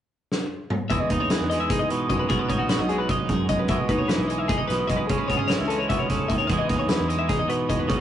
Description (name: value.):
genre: math rock and midwest emo.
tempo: 300 BPM (eighths).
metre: 7/8.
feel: straight.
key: E major.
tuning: A4 = 440 Hz.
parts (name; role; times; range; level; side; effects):
loose indie drum kit; drums; 0.3-8.0 s; hi-hat, kick drum, snare drum, toms; -26 LUFS; equal; none.
twelve-string electric guitar; accompaniment; 0.9-8.0 s; E2 to G#4; -25 LUFS; right 3 dB; none.
twelve-string electric guitar; arpeggios; 0.9-8.0 s; F#4 to E5; -27 LUFS; left 5 dB; none.
picked electric bass; bass; 0.9-8.0 s; G#1 to F#2; -31 LUFS; equal; none.
room: moderate studio reverb, RT60 0.5 s.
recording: rough rehearsal-room recording, nothing above 10.7 kHz.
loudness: -21 LUFS.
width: side -10 dB against mid.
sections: 0.9-8.0 A section.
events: drum fill 0.3-0.9.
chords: 0.0 N.C.; 0.9 Emaj7; 2.3 B13; 3.7 Emaj7; 5.1 Amaj7; 6.5 Emaj7.